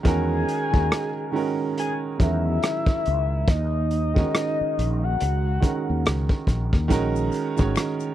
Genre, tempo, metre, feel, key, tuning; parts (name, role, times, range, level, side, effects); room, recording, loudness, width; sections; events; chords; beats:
R&B, neo-soul; 70 BPM; 4/4; swing 58% on 16ths; A4 = 440 Hz
warm upright piano; accompaniment; 0.0-8.1 s; D#3 to C#5; -26 LUFS; right 5 dB
soft octave-layered synth lead; melody; 0.1-6.5 s; D#5 to G#5; -28 LUFS; left 3 dB; chorus, phaser
mellow fretless electric bass; bass; 0.1-7.8 s; G#1 to E2; -24 LUFS; equal; ensemble chorus
crunchy breakbeat drum kit; drums; 0.1-8.0 s; hi-hat, kick drum, rim click; -22 LUFS; equal
tube shaker and finger snaps; percussion; 6.9-8.1 s; -42 LUFS; left 20 dB
little or no reverb; dry, close 1970s-style studio recording; -21 LUFS; side -12 dB against mid
0.0-8.1 A section
0.0 Emaj7; 3.5 D#m7; 6.9 A#m7
| 0.05 0.91 1.76 2.62 | 3.48 4.33 5.19 6.05 | 6.91 7.76